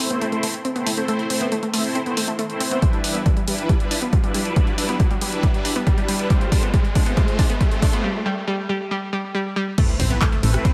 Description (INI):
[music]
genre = uplifting trance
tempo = 138 BPM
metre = 4/4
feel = straight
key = A minor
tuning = A4 = 440 Hz
[part]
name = filtered supersaw swell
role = sustained chords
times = 0.0-10.7 s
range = G3 to C5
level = -29 LUFS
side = equal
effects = phaser, sidechain pumping
[part]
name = analog pluck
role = arpeggios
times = 0.0-10.7 s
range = G3 to D4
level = -28 LUFS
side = equal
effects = chorus, sidechain pumping, dub echo
[part]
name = punchy analog drum machine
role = drums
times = 0.0-10.7 s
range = crash cymbal, handclaps, hi-hat, ride cymbal, rim click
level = -29 LUFS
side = equal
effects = high-pass filter on hats, high-pass filter on cymbals, high-pass filter on snare
[part]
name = riser and impact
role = sound effects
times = 0.0-10.7 s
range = none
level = -33 LUFS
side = equal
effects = none
[part]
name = electronic kick drum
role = drums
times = 2.8-10.7 s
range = none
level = -21 LUFS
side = equal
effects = none
[part]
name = solid FM bass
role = bass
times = 10.0-10.6 s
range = A1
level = -22 LUFS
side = equal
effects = sidechain pumping
[sound]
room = light reverb, digital ambience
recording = none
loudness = -21 LUFS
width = mono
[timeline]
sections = 0.0-9.8 A section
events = build-up 0.0-9.8; riser 0.0-8.0; filter sweep on synth pluck 0.0-9.8; drum fill 2.8-8.0; break 8.0-9.8; impact 9.8-10.7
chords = 0.0 Amadd9; 2.8 Em7; 6.3 F; 9.8 Amadd9